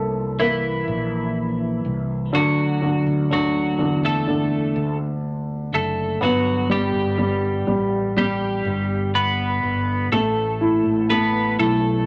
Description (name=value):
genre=pop ballad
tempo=62 BPM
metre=4/4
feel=straight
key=D major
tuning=A4 = 440 Hz
part: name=twelve-string electric guitar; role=melody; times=0.0-12.1 s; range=E3 to B4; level=-26 LUFS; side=equal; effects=none
part: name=warm baby grand piano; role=accompaniment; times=0.0-12.1 s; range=D3 to A4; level=-24 LUFS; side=equal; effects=none
part: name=fretless electric bass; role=bass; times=0.0-12.1 s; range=F#1 to E2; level=-29 LUFS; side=equal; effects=none
room=wet studio reverb, RT60 0.5 s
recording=none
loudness=-21 LUFS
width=mono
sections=0.0-12.1 A section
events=none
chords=0.0 Bbmaj7; 2.3 Dsus2; 6.2 G; 10.1 A5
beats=0.38 1.35 | 2.33 3.30 4.27 5.24 | 6.21 7.18 8.16 9.14 | 10.12 11.10